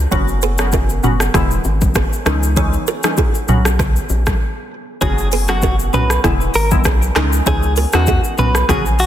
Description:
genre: afrobeats.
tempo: 98 BPM.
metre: 4/4.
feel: swing 55% on 16ths.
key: F# mixolydian.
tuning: A4 = 440 Hz.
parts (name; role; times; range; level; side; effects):
round analog bass; bass; 0.0-9.1 s; E1 to E2; -17 LUFS; equal; none.
glassy wavetable pluck; accompaniment; 0.1-9.1 s; E3 to F#4; -22 LUFS; left 1 dB; chorus.
kalimba; riff; 0.1-8.8 s; C#4 to C#5; -25 LUFS; right 8 dB; digital delay.
afro-pop drum kit; drums; 0.1-9.1 s; handclaps, hi-hat, kick drum, rim click, shaker, toms; -18 LUFS; equal; soft clipping on snare.
congas and bongos; percussion; 0.1-8.8 s; none; -28 LUFS; left 5 dB; none.
direct-recorded clean electric guitar; melody; 5.0-9.1 s; F#4 to B4; -20 LUFS; equal; spring reverb, digital delay.
room: light reverb, digital ambience.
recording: dense, heavily limited modern master.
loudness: -13 LUFS.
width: side -11 dB against mid.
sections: 0.0-5.0 A section; 5.0-9.1 B section.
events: break 4.4-5.0.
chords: 0.1 F#sus4; 1.3 E; 2.3 C#madd9; 3.5 Bsus2; 5.0 F#sus4; 6.2 E; 7.2 C#madd9; 8.4 Bsus2.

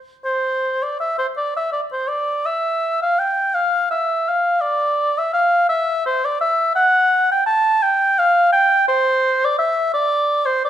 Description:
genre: classical, baroque-style fantasia for unaccompanied oboe.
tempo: 56 BPM (dotted quarters).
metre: 6/8.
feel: rubato.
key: F major.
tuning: A4 = 440 Hz.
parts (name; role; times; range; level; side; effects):
warm oboe; solo; 0.2-10.7 s; C5 to A5; -16 LUFS; equal; none.
room: moderate recital hall reverb, RT60 1.3 s.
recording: minimal, uncompressed stereo recording.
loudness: -16 LUFS.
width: side -10 dB against mid.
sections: 0.3-10.7 A section.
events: none.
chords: none.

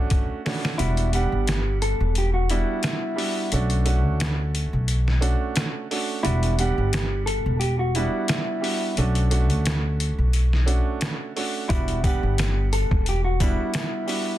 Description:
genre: hip hop, boom-bap hip-hop.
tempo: 88 BPM.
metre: 4/4.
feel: swing 55% on 16ths.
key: E dorian.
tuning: A4 = 440 Hz.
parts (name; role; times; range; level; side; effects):
warm grand piano; accompaniment; 0.0-14.4 s; G3 to F#5; -29 LUFS; right 5 dB; high-pass filter, low-pass filter, plate reverb.
trip hop sampler-style drum kit; drums; 0.1-14.3 s; hi-hat, kick drum, snare drum; -26 LUFS; equal; none.
mellow electric guitar; melody; 0.8-14.4 s; E4 to A4; -28 LUFS; left 1 dB; high-pass filter, low-pass filter, plate reverb, ping-pong delay.
upright bass; bass; 0.8-13.5 s; E1 to D2; -22 LUFS; equal; none.
sleigh bells; percussion; 11.7-14.3 s; none; -41 LUFS; left 11 dB; none.
room: little or no reverb.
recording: dense, heavily limited modern master.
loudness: -21 LUFS.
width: side -14 dB against mid.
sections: 0.8-14.4 A section.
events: drum fill 0.0-0.8; kick muted 0.8-11.7.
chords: 0.0 Bm7 (rootless); 0.8 Em7; 3.5 Bm7; 6.2 Em7; 9.0 Bm7; 11.7 Em7.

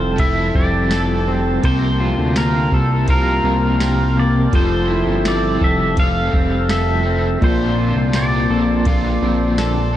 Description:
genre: dream pop.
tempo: 83 BPM.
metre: 4/4.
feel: straight.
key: F major.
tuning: A4 = 439 Hz.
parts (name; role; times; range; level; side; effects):
pedal steel guitar; melody; 0.0-9.6 s; A4 to F5; -23 LUFS; equal; lush chorus, analog delay.
crunchy overdriven guitar; accompaniment; 0.0-10.0 s; Bb2 to Bb4; -24 LUFS; right 1 dB; tremolo, ensemble chorus.
mellow tonewheel organ; sustained chords; 0.0-10.0 s; Bb3 to E6; -24 LUFS; equal; slow rotary speaker.
electric guitar at the edge of break-up; arpeggios; 0.0-10.0 s; Bb2 to Bb4; -21 LUFS; left 2 dB; analog chorus, analog delay.
fat analog bass; bass; 0.0-10.0 s; F1 to D2; -20 LUFS; equal; none.
soft vintage rhythm box; drums; 0.2-9.8 s; kick drum, ride cymbal, snare drum, tambourine; -20 LUFS; equal; none.
room: moderate plate reverb, RT60 3.6 s.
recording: dreamy mix soaked in reverb, cassette tape.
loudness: -14 LUFS.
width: side -12 dB against mid.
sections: 0.0-10.0 A section.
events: none.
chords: 0.0 Fmaj9; 1.6 C7sus4; 4.5 Fmaj9; 7.4 Bbmaj9.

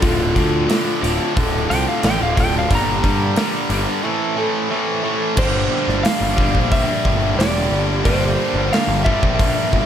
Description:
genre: classic rock.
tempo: 90 BPM.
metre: 4/4.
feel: straight.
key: unclear.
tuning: A4 = 440 Hz.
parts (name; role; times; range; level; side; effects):
electric slide guitar; melody; 0.0-9.9 s; F4 to Bb5; -22 LUFS; left 1 dB; none.
picked twelve-string acoustic guitar; accompaniment; 0.0-9.9 s; G2 to Bb4; -29 LUFS; right 2 dB; none.
overdriven electric guitar; riff; 0.0-9.9 s; D2 to A3; -25 LUFS; left 1 dB; none.
tight distorted guitar; riff; 0.0-9.9 s; D2 to G4; -25 LUFS; left 10 dB; distortion.
tight distorted guitar; riff; 0.0-9.9 s; D2 to G4; -24 LUFS; right 10 dB; distortion.
fuzz picked electric bass; bass; 0.0-9.9 s; D1 to G2; -22 LUFS; equal; overdrive.
big rock drum kit; drums; 0.0-9.9 s; crash cymbal, hi-hat, kick drum, snare drum; -21 LUFS; equal; none.
room: light reverb.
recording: none.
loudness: -16 LUFS.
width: side -9 dB against mid.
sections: 0.0-5.4 A section; 5.4-9.9 B section.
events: electric slide guitar solo 0.0-5.4.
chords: 0.0 Dm; 2.7 Gm; 4.0 Am; 5.4 Gm.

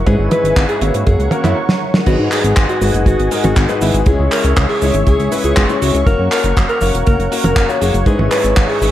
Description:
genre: italo disco.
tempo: 120 BPM.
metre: 4/4.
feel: straight.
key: G# minor.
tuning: A4 = 440 Hz.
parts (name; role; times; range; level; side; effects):
warm analog pad; sustained chords; 0.0-8.9 s; G#4 to C#6; -22 LUFS; right 1 dB; chorus, vintage 12-bit sampler grit.
clear concert grand piano; stabs; 0.0-8.9 s; G#2 to C#5; -20 LUFS; left 5 dB; none.
chorused synth bass; bass; 0.0-8.9 s; E1 to G#2; -16 LUFS; equal; none.
breathy alto saxophone; melody; 0.1-8.9 s; E4 to B4; -20 LUFS; equal; tape echo.
damped 70s drum kit; drums; 0.1-8.9 s; cabasa, crash cymbal, handclaps, hi-hat, snare drum, toms; -19 LUFS; right 1 dB; gated reverb.
kick drum; drums; 0.1-8.7 s; none; -14 LUFS; equal; none.
room: light reverb, small room ambience.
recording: none.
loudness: -12 LUFS.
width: side -12 dB against mid.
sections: 0.0-2.1 A section; 2.1-8.9 B section.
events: drum fill 1.7-2.1.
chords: 0.1 E6/G#; 1.1 F#; 2.1 G#m7; 4.1 C#m; 6.1 F#; 8.1 E6/G#.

